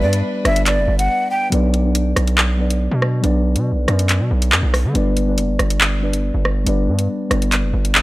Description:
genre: hip hop, drill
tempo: 140 BPM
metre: 4/4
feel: half-time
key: B minor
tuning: A4 = 441 Hz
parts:
  - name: breathy mellow jazz flute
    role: melody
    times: 0.0-1.5 s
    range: D5 to G5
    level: -20 LUFS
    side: equal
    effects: tape echo
  - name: muted felt-like synth keys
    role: accompaniment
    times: 0.0-8.0 s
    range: F#3 to D5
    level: -22 LUFS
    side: left 1 dB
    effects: chorus, low-pass filter
  - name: clear chamber string section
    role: sustained chords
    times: 0.0-1.5 s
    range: G3 to B4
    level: -30 LUFS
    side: left 1 dB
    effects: none
  - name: distorted 808-style bass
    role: bass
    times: 0.0-8.0 s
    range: F#1 to D3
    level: -18 LUFS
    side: equal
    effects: distortion
  - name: drill drum kit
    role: drums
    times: 0.1-8.0 s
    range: handclaps, hi-hat, rim click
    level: -18 LUFS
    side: equal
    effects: none
room: studio ambience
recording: dry, gritty hardware recording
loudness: -15 LUFS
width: side -18 dB against mid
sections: 0.0-1.5 A section; 1.5-8.0 B section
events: break 1.1-1.5; filter sweep on synth keys 1.5-8.0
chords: 0.0 G; 1.5 Bm; 5.0 G

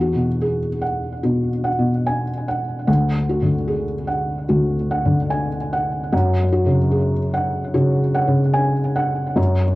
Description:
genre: neoclassical minimalist piano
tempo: 74 BPM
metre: 4/4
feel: rubato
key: unclear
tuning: A4 = 439 Hz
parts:
  - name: felt-muted upright piano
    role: solo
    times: 0.0-9.8 s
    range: D2 to G#5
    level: -17 LUFS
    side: equal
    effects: cassette tape, tape echo
room: light reverb, studio ambience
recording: home recording on cassette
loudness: -17 LUFS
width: side -19 dB against mid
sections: 0.0-9.8 A section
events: none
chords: 0.0 Eadd9; 2.9 D; 6.1 F#5

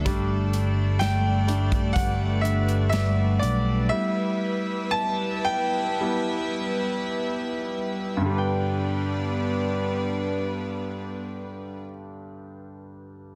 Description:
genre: pop ballad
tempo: 50-64 BPM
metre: 4/4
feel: straight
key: G major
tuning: A4 = 435 Hz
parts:
  - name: clear concert grand piano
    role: accompaniment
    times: 0.0-13.4 s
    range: G2 to A5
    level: -30 LUFS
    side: equal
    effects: none
  - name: warm studio string section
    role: sustained chords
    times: 0.0-11.8 s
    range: G3 to E5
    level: -32 LUFS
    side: equal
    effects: none
  - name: fretless electric bass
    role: bass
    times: 0.0-3.9 s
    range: G1 to B1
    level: -26 LUFS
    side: equal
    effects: ensemble chorus
  - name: fingerpicked steel-string acoustic guitar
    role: arpeggios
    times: 0.1-4.5 s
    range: G3 to G4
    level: -35 LUFS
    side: equal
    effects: none
  - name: natural country drum kit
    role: drums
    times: 0.1-3.7 s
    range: hi-hat, kick drum, snare drum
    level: -31 LUFS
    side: equal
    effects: none
room: light reverb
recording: dense, heavily limited modern master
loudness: -25 LUFS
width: mono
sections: 0.0-8.3 A section; 8.3-13.0 B section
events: grand piano solo 0.0-8.3; slowing down 0.1-8.3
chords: 0.1 Gsus2; 3.9 Em; 8.3 G

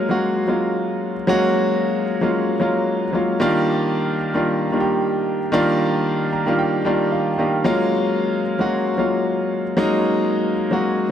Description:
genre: amapiano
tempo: 113 BPM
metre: 4/4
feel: swing 55% on 16ths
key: unclear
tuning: A4 = 440 Hz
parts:
  - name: clear grand piano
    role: solo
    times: 0.0-11.1 s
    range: Eb3 to Bb5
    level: -18 LUFS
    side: equal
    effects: tape echo
room: light reverb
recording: none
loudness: -18 LUFS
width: side -9 dB against mid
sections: 0.0-11.1 A section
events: grand piano fill 6.1-7.7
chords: 0.0 Gbmaj9; 3.4 Ebmaj9; 7.7 Gbmaj9

